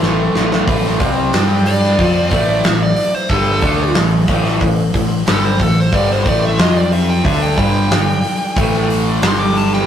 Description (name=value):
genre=hard rock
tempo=91 BPM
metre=4/4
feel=straight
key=A minor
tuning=A4 = 444 Hz
part: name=mellow tonewheel organ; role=sustained chords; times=0.0-9.9 s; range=F3 to E5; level=-31 LUFS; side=right 2 dB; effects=none
part: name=overdriven electric guitar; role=riff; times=0.0-9.9 s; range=G2 to G4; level=-19 LUFS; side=left 3 dB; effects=phaser
part: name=overdriven electric guitar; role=riff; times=0.0-9.9 s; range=G2 to G4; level=-23 LUFS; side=right 5 dB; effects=none
part: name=tight distorted guitar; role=riff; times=0.0-9.9 s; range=G2 to G4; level=-24 LUFS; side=right 2 dB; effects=distortion
part: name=hollow-body short-scale picked electric bass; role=bass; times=0.0-9.8 s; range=G1 to G2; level=-19 LUFS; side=equal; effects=none
part: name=big rock drum kit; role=drums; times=0.0-9.8 s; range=hi-hat, kick drum, snare drum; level=-17 LUFS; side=equal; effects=none
part: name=nasal lead guitar with a parked wah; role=melody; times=1.7-9.9 s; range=A4 to D6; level=-19 LUFS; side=equal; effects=overdrive
room=moderate stone room reverb, RT60 1.0 s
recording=rough rehearsal-room recording, tube saturation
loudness=-12 LUFS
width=side -9 dB against mid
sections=0.7-9.9 A section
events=drum fill 0.0-0.7; lead electric guitar solo 0.7-9.9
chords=0.0 A5; 0.7 Am; 1.3 G5; 2.0 Am; 5.9 G5; 6.6 F5; 7.2 G5; 8.6 A5; 9.2 G5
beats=0.03 | 0.69 1.34 2.00 2.66 | 3.31 3.97 4.62 5.28 | 5.94 6.59 7.25 7.91 | 8.56 9.22